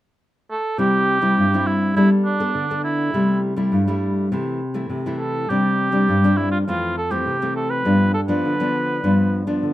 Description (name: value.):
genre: samba.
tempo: 102 BPM.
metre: 4/4.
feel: straight.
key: C major.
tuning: A4 = 440 Hz.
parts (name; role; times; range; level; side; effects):
mellow cor anglais; melody; 0.5-9.4 s; D4 to B4; -22 LUFS; right 2 dB; none.
nylon-string guitar; accompaniment; 0.8-9.7 s; F2 to A4; -19 LUFS; left 1 dB; none.
room: wet small room reverb, RT60 0.5 s.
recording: rough home demo mix.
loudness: -17 LUFS.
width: side -15 dB against mid.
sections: 0.8-9.7 A section.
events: none.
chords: 0.0 N.C.; 0.8 C; 2.0 Gadd9; 3.1 C6; 4.3 Am/C; 5.5 Csus2; 6.7 Fmaj7; 7.9 G7.